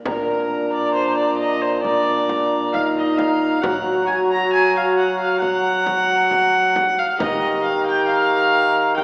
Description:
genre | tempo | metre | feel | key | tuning
classical, renaissance-style consort dance | 67 BPM | 4/4 | straight | unclear | A4 = 441 Hz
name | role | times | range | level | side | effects
clear trombone | accompaniment | 0.0-9.0 s | D4 to G4 | -22 LUFS | equal | none
alto recorder | melody | 0.1-9.0 s | Bb5 | -26 LUFS | equal | none
rich viola | second line | 0.1-9.0 s | Bb4 to Bb5 | -19 LUFS | equal | none
dark bassoon | bass | 0.1-9.0 s | Bb2 to Gb3 | -23 LUFS | equal | none
frame drum | percussion | 0.1-9.0 s | none | -31 LUFS | equal | none
room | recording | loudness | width
wet concert hall reverb, RT60 2.2 s | recorded in a church or concert hall, small speaker sound | -16 LUFS | side -30 dB against mid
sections
0.1-9.0 A section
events
none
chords
0.1 Bb; 3.6 Gb; 7.2 Eb

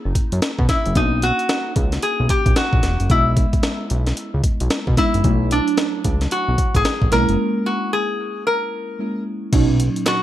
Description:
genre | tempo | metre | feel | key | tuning
R&B, new jack swing | 112 BPM | 4/4 | swing 63% on 16ths | B major | A4 = 440 Hz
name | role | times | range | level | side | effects
mellow FM electric piano | accompaniment | 0.0-10.2 s | A#2 to D#5 | -25 LUFS | right 1 dB | chorus, phaser
fat analog bass | bass | 0.1-9.9 s | E1 to B2 | -19 LUFS | equal | none
breakbeat sampler-style drum kit | drums | 0.2-10.2 s | crash cymbal, hi-hat, kick drum, snare drum | -20 LUFS | equal | gated reverb
metal-body resonator slide guitar | melody | 0.7-10.2 s | D4 to A#4 | -21 LUFS | equal | none
group handclap | percussion | 10.1-10.2 s | none | -30 LUFS | left 2 dB | none
room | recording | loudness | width
light reverb | none | -16 LUFS | side -13 dB against mid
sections
0.0-9.5 A section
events
break 7.4-9.5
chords
0.0 F#7; 1.0 Bmaj7; 3.1 C#m7/B (rootless); 5.2 Dmaj9/B; 7.1 F#7 (rootless); 9.5 Bmaj7

